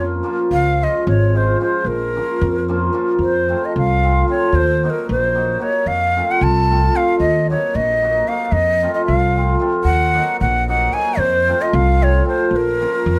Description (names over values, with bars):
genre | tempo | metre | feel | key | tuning
balkan folk, Balkan wedding band | 226 BPM (eighths) | 5/8 | straight | unclear | A4 = 443 Hz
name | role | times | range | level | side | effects
breathy bright ney | melody | 0.0-13.2 s | Bb4 to A5 | -20 LUFS | equal | none
cimbalom | accompaniment | 0.0-13.2 s | F3 to Gb4 | -23 LUFS | equal | none
upright bass | bass | 0.0-13.1 s | Ab1 to F2 | -21 LUFS | equal | none
room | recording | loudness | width
moderate studio reverb, RT60 0.7 s | none | -17 LUFS | mono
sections
0.0-3.2 A section; 3.2-13.2 B section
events
none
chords
0.0 Bbm; 0.5 Db; 1.9 Bbm; 3.2 F; 4.5 Ebm; 5.9 F; 7.2 Ebm; 8.5 F; 9.9 Ebm; 11.2 F; 12.5 Bbm